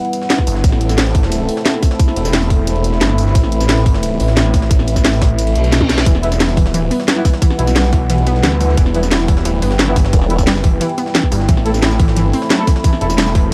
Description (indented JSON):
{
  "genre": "dark technical drum and bass",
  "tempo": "177 BPM",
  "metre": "4/4",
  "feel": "straight",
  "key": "unclear",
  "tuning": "A4 = 440 Hz",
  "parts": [
    { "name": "dark analog pad", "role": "sustained chords", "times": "0.0-13.5 s", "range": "G3 to B4", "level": "-24 LUFS", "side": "equal", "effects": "chorus, sidechain pumping" },
    { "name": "jungle sampler-style drum kit", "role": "drums", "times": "0.0-13.4 s", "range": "hi-hat, ride cymbal, snare drum", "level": "-31 LUFS", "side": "equal", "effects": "none" },
    { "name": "warbly tape-like pad", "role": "texture", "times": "0.0-13.5 s", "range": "E4 to B5", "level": "-27 LUFS", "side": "equal", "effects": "chorus, built-in reverb, sidechain pumping" },
    { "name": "drum and bass drum kit", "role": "drums", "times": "0.1-13.4 s", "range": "hi-hat, snare drum, tambourine, toms", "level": "-20 LUFS", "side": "equal", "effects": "none" },
    { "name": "electronic kick drum", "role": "drums", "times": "0.4-13.4 s", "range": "none", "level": "-15 LUFS", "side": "equal", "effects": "none" },
    { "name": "snarling distorted saw bass", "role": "bass", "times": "0.5-13.5 s", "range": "E1 to D2", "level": "-18 LUFS", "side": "equal", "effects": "distortion, overdrive, sidechain pumping" },
    { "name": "reverse cymbal", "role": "sound effects", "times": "5.5-6.1 s", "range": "none", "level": "-29 LUFS", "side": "equal", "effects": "none" },
    { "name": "analog pluck", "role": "arpeggios", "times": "6.1-13.4 s", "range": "E3 to E4", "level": "-24 LUFS", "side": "equal", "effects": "chorus, cassette tape, sidechain pumping, dub echo" },
    { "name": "bright brass ensemble", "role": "stabs", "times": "6.2-13.1 s", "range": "E3 to A4", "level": "-26 LUFS", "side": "equal", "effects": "dub echo" },
    { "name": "formant-sweep wobble bass", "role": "bass", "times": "10.1-10.5 s", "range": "E1", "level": "-19 LUFS", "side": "equal", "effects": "chorus" }
  ],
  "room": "light reverb",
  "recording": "dark, warm production",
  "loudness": "-14 LUFS",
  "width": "mono",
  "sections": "0.0-13.5 A section",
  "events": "reverse cymbal 5.5-6.1; drum fill 5.8",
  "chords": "0.0 Em; 0.6 Am; 6.1 Em; 11.5 Am",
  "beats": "0.30 | 0.64 0.98 1.32 1.66 | 2.00 2.33 2.67 3.01 | 3.35 3.69 4.03 4.37 | 4.71 5.05 5.38 5.72 | 6.06 6.40 6.74 7.08 | 7.42 7.76 8.10 8.44 | 8.78 9.11 9.45 9.79 | 10.13 10.47 10.81 11.15 | 11.49 11.83 12.16 12.50 | 12.84 13.18 13.52"
}